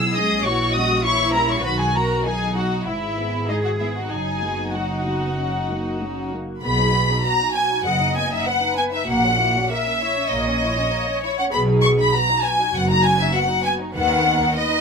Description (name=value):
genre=quick classical-period movement for string orchestra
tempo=99 BPM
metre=4/4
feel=rubato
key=B major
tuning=A4 = 442 Hz
part: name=dark chamber violin section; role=melody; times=0.0-14.8 s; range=A#3 to E6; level=-26 LUFS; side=left 2 dB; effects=none
part: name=dark symphonic viola section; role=accompaniment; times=0.0-14.8 s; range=D#3 to D#5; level=-27 LUFS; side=left 1 dB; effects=none
part: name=rich symphonic cello section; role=bass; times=0.0-14.4 s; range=F#2 to G#4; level=-28 LUFS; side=right 1 dB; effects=none
part: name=warm symphonic double bass section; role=bass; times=0.0-14.4 s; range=F#1 to D#2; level=-25 LUFS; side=right 2 dB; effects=none
part: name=clear studio violin section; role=second line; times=0.1-14.8 s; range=D#4 to C#6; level=-21 LUFS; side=left 1 dB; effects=none
room=light reverb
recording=minimal, uncompressed stereo recording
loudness=-18 LUFS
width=side -5 dB against mid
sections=0.0-6.6 A section; 6.6-14.8 B section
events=none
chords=0.5 A#dim7; 1.6 B; 2.9 E/G#; 4.1 B/F#; 5.4 F#; 6.6 B; 9.1 F#7/A#; 11.5 B; 13.9 B/D#